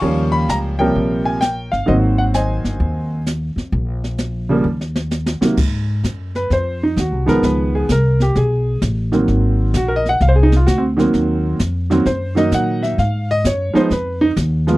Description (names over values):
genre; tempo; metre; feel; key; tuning
jazz piano trio; 130 BPM; 4/4; swing 67% on 8ths; Ab mixolydian; A4 = 441 Hz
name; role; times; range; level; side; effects
clear concert grand piano; melody; 0.0-14.8 s; C3 to Db6; -17 LUFS; right 1 dB; none
upright bass; bass; 0.0-14.8 s; G1 to Bb2; -18 LUFS; equal; none
jazz brush drum kit; drums; 0.0-14.8 s; brushed snare drum, crash cymbal, hi-hat, kick drum, snare drum; -23 LUFS; equal; none
room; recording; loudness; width
little or no reverb; dry, close 1970s-style studio recording; -15 LUFS; side -18 dB against mid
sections
0.0-5.6 A section; 5.6-14.8 B section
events
drum fill 4.7-5.6; grand piano solo 5.6-14.8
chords
0.0 Eb9; 1.9 Ab9; 3.7 N.C.; 4.7 Eb5; 5.6 Ab7(no3); 7.4 Db9; 9.3 Ab9; 13.0 Ebmadd9